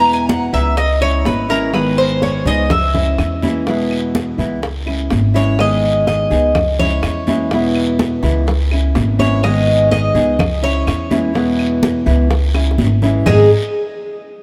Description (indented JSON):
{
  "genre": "latin, Cuban son and guajira",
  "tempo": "125 BPM",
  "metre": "4/4",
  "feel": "straight",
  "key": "unclear",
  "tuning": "A4 = 439 Hz",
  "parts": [
    { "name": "nylon-string guitar", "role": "accompaniment", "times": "0.0-13.5 s", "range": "G#2 to G#4", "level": "-21 LUFS", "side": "equal", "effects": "none" },
    { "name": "Cuban tres", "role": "arpeggios", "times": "0.0-13.5 s", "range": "G#3 to A#5", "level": "-19 LUFS", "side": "equal", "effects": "none" },
    { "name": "upright bass", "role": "bass", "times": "0.0-13.5 s", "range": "G#1 to E2", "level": "-20 LUFS", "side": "equal", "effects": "none" },
    { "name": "claves", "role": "percussion", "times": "0.1-13.4 s", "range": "none", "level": "-33 LUFS", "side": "equal", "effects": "none" },
    { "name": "congas", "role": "percussion", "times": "0.1-13.4 s", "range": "none", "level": "-23 LUFS", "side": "equal", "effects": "none" },
    { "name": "bongos", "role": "percussion", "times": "0.3-13.4 s", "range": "none", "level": "-30 LUFS", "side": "equal", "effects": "none" },
    { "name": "guiro", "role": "percussion", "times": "0.3-13.4 s", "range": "none", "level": "-34 LUFS", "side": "equal", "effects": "none" }
  ],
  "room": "moderate plate reverb, RT60 3.3 s",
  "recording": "heard from further back in the room",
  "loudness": "-15 LUFS",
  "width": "mono",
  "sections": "0.0-13.3 A section; 13.3-14.4 B section",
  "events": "Cuban tres solo 0.0-13.3; drum fill 12.6-13.3",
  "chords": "0.0 E; 0.8 C#m; 1.7 G#m; 2.7 C#m; 3.7 E; 4.6 C#m; 5.6 G#m; 6.6 C#m; 7.5 E; 8.5 C#m; 9.4 G#m; 10.4 C#m; 11.4 E; 12.3 C#m; 13.3 G#m",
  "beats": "0.30 0.78 1.26 | 1.74 2.23 2.71 3.19 | 3.67 4.15 4.63 5.11 | 5.59 6.08 6.55 7.04 | 7.52 8.00 8.48 8.96 | 9.44 9.92 10.40 10.88 | 11.36 11.84 12.32 12.80 | 13.28"
}